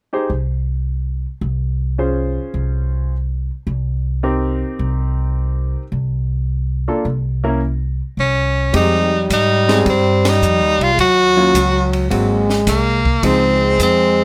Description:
jazz, small-group swing and bop; 107 BPM; 4/4; swing 69% on 8ths; F minor; A4 = 437 Hz
clear concert grand piano; accompaniment; 0.1-14.2 s; F3 to C5; -23 LUFS; equal
upright bass; bass; 0.3-14.2 s; Ab1 to Ab2; -21 LUFS; equal
edgy tenor saxophone; melody; 8.2-14.2 s; Bb3 to Gb4; -18 LUFS; equal
mellow trombone; second line; 8.7-14.2 s; Gb3 to Ab3; -21 LUFS; equal
compact cocktail drum kit; drums; 8.7-14.0 s; hi-hat, kick drum, ride cymbal, snare drum; -27 LUFS; equal
light reverb; -17 LUFS; mono
0.0-8.7 A section; 8.7-14.2 B section
band accent 10.1
0.0 N.C.; 2.0 Dbmaj7/C; 3.1 N.C.; 4.2 Cm7; 6.5 C13b9; 7.6 N.C.; 8.7 Fm7; 11.0 Ebm7; 12.1 Ab7; 13.2 Dbmaj9
0.30 0.87 1.43 | 1.99 2.56 3.12 3.68 | 4.24 4.81 5.37 5.93 | 6.49 7.05 7.62 8.18 | 8.74 9.30 9.86 10.42 | 10.98 11.55 12.11 12.67 | 13.23 13.79

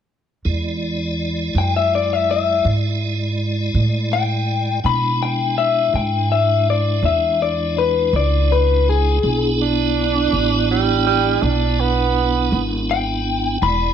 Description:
slow blues; 55 BPM (dotted quarters); 12/8; straight; E mixolydian; A4 = 442 Hz
tonewheel organ; sustained chords; 0.4-13.9 s; G#3 to D5; -23 LUFS; right 1 dB; overdrive, chorus vibrato, slow rotary speaker
upright bass; bass; 0.5-13.9 s; E1 to B2; -20 LUFS; right 2 dB
electric guitar through a small old amp; melody; 1.6-13.9 s; G#4 to B5; -18 LUFS; left 8 dB; slapback echo
warm tenor saxophone; second line; 9.6-12.7 s; G3 to D4; -20 LUFS; right 10 dB
light reverb, small room ambience; 1960s-style stereo with parts hard left and right; -16 LUFS; side -8 dB against mid
0.5-13.9 A section
0.5 E7
| 0.46 1.55 2.65 3.75 | 4.84 5.94 7.04 8.13 | 9.23 10.33 11.42 12.52 | 13.62

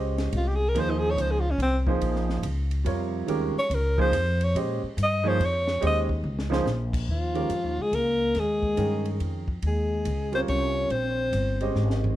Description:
modal jazz; 142 BPM; 3/4; swing 65% on 8ths; Eb mixolydian; A4 = 440 Hz
warm upright piano; accompaniment; 0.0-12.2 s; C3 to G5; -29 LUFS; right 4 dB
upright bass; bass; 0.0-12.2 s; G1 to Bb2; -27 LUFS; equal
compact cocktail drum kit; drums; 0.2-12.1 s; crash cymbal, hi-hat, kick drum, ride cymbal, snare drum, toms; -36 LUFS; equal
clear alto saxophone; melody; 0.4-11.8 s; C4 to Eb5; -26 LUFS; equal
trombone with bucket mute; second line; 7.1-11.8 s; F3 to Db4; -31 LUFS; left 4 dB
light reverb; dark, warm production; -23 LUFS; side -14 dB against mid
0.0-7.1 A section; 7.1-12.2 B section
alto saxophone solo 0.0-7.1; drum fill 6.2-6.7, 11.7-12.2
0.0 Eb13sus4
0.34 | 0.76 1.18 1.60 | 2.02 2.44 2.86 | 3.29 3.71 4.13 | 4.55 4.97 5.39 | 5.82 6.24 6.66 | 7.08 7.50 7.93 | 8.35 8.78 9.20 | 9.62 10.05 10.47 | 10.90 11.32 11.75

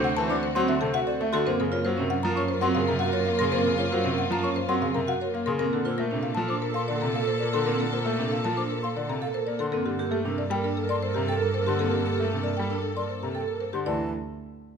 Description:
classical, minimalist pattern music; 116 BPM; 4/4; straight; A4 = 441 Hz
buzzing marimba with medium mallets; melody; 0.0-14.1 s; G4 to A#5; -30 LUFS; left 9 dB
mellow clarinet; second line; 0.0-13.7 s; A4 to C5; -34 LUFS; right 5 dB
bright grand piano; accompaniment; 0.0-14.1 s; C3 to A#3; -30 LUFS; equal
rich studio string section; sustained chords; 0.0-13.7 s; A#3 to A4; -34 LUFS; left 2 dB
mellow hollow silver concert flute; arpeggios; 0.0-14.1 s; E5 to D6; -35 LUFS; left 3 dB
vibraphone with medium mallets; arpeggios; 0.0-14.1 s; C4 to A#4; -31 LUFS; right 6 dB
warm cello; bass; 0.0-14.1 s; D2 to Bb2; -32 LUFS; right 4 dB
moderate large studio reverb, RT60 1.4 s; -24 LUFS; side -6 dB against mid
0.0-13.9 A section
0.0 D7; 1.5 F#maj7; 5.6 Bbmaj7; 9.7 Gmadd9; 13.9 D5
0.42 0.94 | 1.46 1.97 2.49 3.01 | 3.52 4.04 4.56 5.08 | 5.59 6.11 6.63 7.14 | 7.66 8.18 8.70 9.21 | 9.73 10.25 10.77 11.28 | 11.80 12.32 12.83 13.35 | 13.87

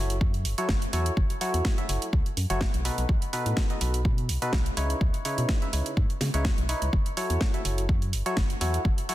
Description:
piano house; 125 BPM; 4/4; swing 54% on 16ths; F# dorian; A4 = 440 Hz
barking FM electric piano; riff; 0.0-9.1 s; B2 to E5; -31 LUFS; equal; chorus, sidechain pumping, digital delay
organ-like FM bass; bass; 0.0-8.9 s; F#1 to C#3; -28 LUFS; equal; sidechain pumping
house drum kit; drums; 0.1-9.1 s; hi-hat, snare drum; -33 LUFS; right 1 dB
electronic kick drum; drums; 0.2-9.0 s; -25 LUFS; equal
little or no reverb; dense, heavily limited modern master; -24 LUFS; side -15 dB against mid
0.0-9.1 A section
0.0 F#m7; 2.9 B7; 4.8 C#m9; 6.9 F#m7
0.21 0.69 | 1.17 1.65 2.13 2.61 | 3.09 3.57 4.05 4.53 | 5.01 5.49 5.97 6.45 | 6.93 7.41 7.89 8.37 | 8.85

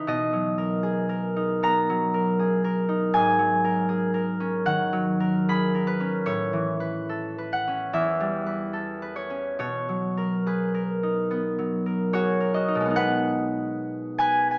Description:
classical, solo harp piece; 67-81 BPM; 4/4; rubato; B major; A4 = 440 Hz
concert harp; solo; 0.0-14.6 s; E2 to B5; -22 LUFS; equal
moderate recital hall reverb, RT60 1.6 s; small speaker sound; -22 LUFS; side -38 dB against mid
0.0-12.9 A section; 12.9-14.6 B section
0.1 Bmaj7; 3.1 G#m11; 6.3 Aadd9; 7.9 Em6; 9.6 Bmaj7; 12.9 B6
| 0.09 0.84 1.64 2.39 | 3.14 3.89 4.66 5.49 | 6.26 7.08 7.93 8.74 | 9.59 10.45 11.29 12.12 | 12.95 13.77 14.57

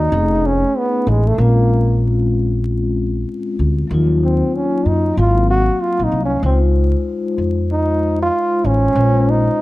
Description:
hip hop, jazz-hop; 95 BPM; 4/4; swing 60% on 16ths; A4 = 440 Hz
breathy trombone; melody; 0.0-9.6 s; G#3 to Gb4; -18 LUFS; right 1 dB; slapback echo
vibraphone with soft mallets; accompaniment; 0.0-9.6 s; F3 to F5; -21 LUFS; left 4 dB
upright bass; bass; 0.0-9.5 s; F1 to Gb2; -16 LUFS; equal
light reverb, studio ambience; dark, warm production, vinyl crackle; -14 LUFS; side -18 dB against mid
0.0-9.6 A section
trombone solo 0.0-9.6
0.1 F7alt; 1.4 Bbm9; 3.9 Ebm; 5.2 Ab13; 6.4 Dbmaj9; 9.0 Bbm7
0.12 0.75 | 1.38 2.01 2.64 3.27 | 3.90 4.54 5.17 5.80 | 6.43 7.06 7.69 8.32 | 8.96 9.59

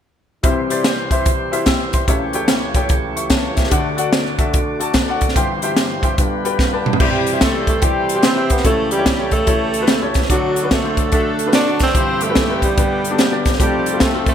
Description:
uptempo gospel; 146 BPM; 4/4; swing 65% on 8ths; C major; A4 = 442 Hz
warm upright piano; accompaniment; 0.4-14.3 s; F1 to E6; -21 LUFS; left 3 dB; wide subtle chorus
dark French horn section; sustained chords; 0.4-7.0 s; C#3 to A4; -32 LUFS; right 2 dB
tonewheel organ; sustained chords; 0.4-14.3 s; C#2 to D5; -25 LUFS; right 2 dB; slow rotary speaker
crisp fusion drum kit; drums; 0.4-14.3 s; crash cymbal, hi-hat, kick drum, snare drum, toms; -17 LUFS; equal; gated reverb
breathy tenor saxophone; melody; 7.0-14.3 s; F#3 to D4; -21 LUFS; right 4 dB; digital delay
clear saxophone section; melody; 7.0-14.3 s; A3 to D5; -23 LUFS; left 2 dB; digital delay
light reverb, small room ambience; bright 1980s-style digital production; -14 LUFS; side -9 dB against mid
0.4-7.0 A section; 7.0-14.3 B section
drum fill 6.6-7.0
0.4 C; 2.1 A7/C#; 3.7 D; 5.4 C/G; 6.2 G; 7.0 C; 8.6 A7/C#; 10.3 D; 11.9 C/G; 12.8 G; 13.6 F
| 0.44 0.85 1.26 1.67 | 2.08 2.48 2.90 3.31 | 3.71 4.12 4.54 4.95 | 5.36 5.77 6.18 6.59 | 7.00 7.41 7.83 8.24 | 8.65 9.06 9.47 9.88 | 10.30 10.71 11.12 11.53 | 11.95 12.36 12.77 13.18 | 13.59 14.00

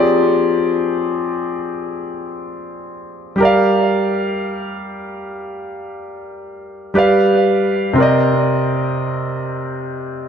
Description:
R&B; free time; F dorian; A4 = 440 Hz
warm concert grand piano; solo; 0.0-10.3 s; C3 to F5; -16 LUFS; equal; tape echo
moderate plate reverb, RT60 3.2 s; echo-heavy mix; -14 LUFS; side -8 dB against mid
0.0-10.3 A section
0.0 Fm69; 3.4 Gm7; 7.0 G7; 8.0 Cm7
free time

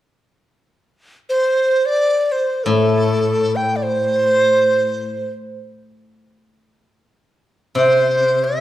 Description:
chinese traditional, Chinese chamber ensemble; free time; A4 = 438 Hz
breathy mellow dizi; melody; 1.3-8.6 s; A4 to G5; -16 LUFS; right 1 dB
steel-string zither; accompaniment; 2.7-5.1, 7.8-8.6 s; A2 to C3; -20 LUFS; left 2 dB
wet recital hall reverb, RT60 1.5 s; dark, warm production; -15 LUFS; side -13 dB against mid
0.9-7.4 A section; 7.4-8.6 B section
free time

